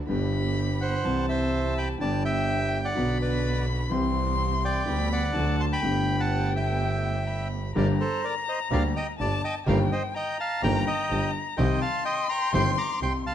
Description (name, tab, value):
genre	tango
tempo	126 BPM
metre	4/4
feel	rubato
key	G major, G minor from 7.8 s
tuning	A4 = 440 Hz
part	clear concert grand piano	accompaniment	0.0-13.3 s	G1 to G4	-29 LUFS	left 1 dB	none
part	warm symphonic string section	stabs	0.0-13.2 s	A3 to G4	-37 LUFS	right 3 dB	none
part	clear double bass	bass	0.0-13.3 s	G1 to D2	-28 LUFS	right 1 dB	none
part	warm violin	second line	0.1-13.3 s	G5 to C6	-32 LUFS	left 5 dB	none
part	bandoneon	melody	0.8-13.3 s	A4 to D6	-29 LUFS	right 1 dB	none
room	light reverb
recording	dark, warm production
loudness	-24 LUFS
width	side -10 dB against mid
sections	0.0-7.8 A section; 7.8-13.3 B section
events	none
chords	0.1 G; 1.1 C; 2.0 G; 3.0 Bm; 3.9 C; 4.9 G/D; 5.4 D; 5.8 Gadd9; 7.8 Gm; 9.7 Eb/G; 11.6 Cm